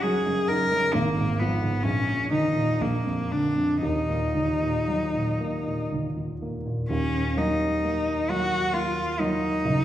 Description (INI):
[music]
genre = classical, romantic duo for cello and grand piano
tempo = 56-67 BPM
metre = 3/4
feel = rubato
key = Eb minor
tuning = A4 = 440 Hz
[part]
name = rich cello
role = melody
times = 0.0-9.8 s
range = Bb3 to Bb4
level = -25 LUFS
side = left 1 dB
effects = none
[part]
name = warm baby grand piano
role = accompaniment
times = 0.0-9.8 s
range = Gb1 to Eb4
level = -26 LUFS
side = right 1 dB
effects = none
[sound]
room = wet recital hall reverb, RT60 1.5 s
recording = heard from further back in the room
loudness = -23 LUFS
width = side -12 dB against mid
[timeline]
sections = 0.0-6.9 A section; 6.9-9.8 B section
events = none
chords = 0.0 Ebm/Gb; 0.9 Fdim/Ab; 1.9 Eb5/Bb; 2.8 Bb; 3.8 Ebm